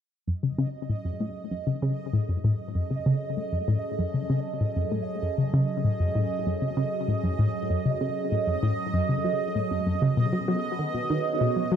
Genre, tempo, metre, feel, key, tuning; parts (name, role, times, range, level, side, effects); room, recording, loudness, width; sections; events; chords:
ambient, sequencer-driven space music; 97 BPM; 4/4; straight; F# dorian; A4 = 440 Hz
phased analog pad; sustained chords; 0.3-11.8 s; F#3 to D#5; -33 LUFS; right 2 dB; phaser, chorus
analog pluck; riff; 0.3-11.8 s; F#2 to F#3; -26 LUFS; left 1 dB; chorus, ping-pong delay
bubbling stepped-filter texture; texture; 0.6-11.8 s; D#5; -32 LUFS; right 5 dB; chorus, built-in reverb
moderate plate reverb, RT60 2.8 s; -24 LUFS; side -8 dB against mid
0.3-11.8 A section
fade-in on analog synth pad 0.3-11.8; filter sweep on synth arpeggio sound 0.3-11.8
0.3 F#m; 10.2 B